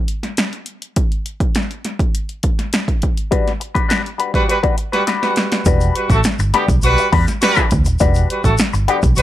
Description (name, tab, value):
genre	funk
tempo	102 BPM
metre	4/4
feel	straight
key	E minor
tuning	A4 = 442 Hz
part	punchy analog drum machine	drums	0.1-9.2 s	hi-hat, kick drum, snare drum	-17 LUFS	equal	none
part	semi-hollow electric guitar	accompaniment	3.3-9.1 s	G3 to B4	-19 LUFS	left 7 dB	wah
part	warm horn section	second line	4.3-9.2 s	D3 to B4	-18 LUFS	right 1 dB	none
part	vintage muted fingered electric bass	bass	5.7-9.2 s	D#1 to E2	-16 LUFS	equal	none
part	tube shaker	percussion	5.7-9.2 s	none	-32 LUFS	left 4 dB	none
room	little or no reverb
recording	none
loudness	-14 LUFS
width	side -13 dB against mid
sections	0.0-5.7 A section; 5.7-9.2 B section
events	break 0.0-3.3; band accent 3.3-5.7; drum fill 5.1-5.7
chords	0.0 Gmaj7; 5.7 Em9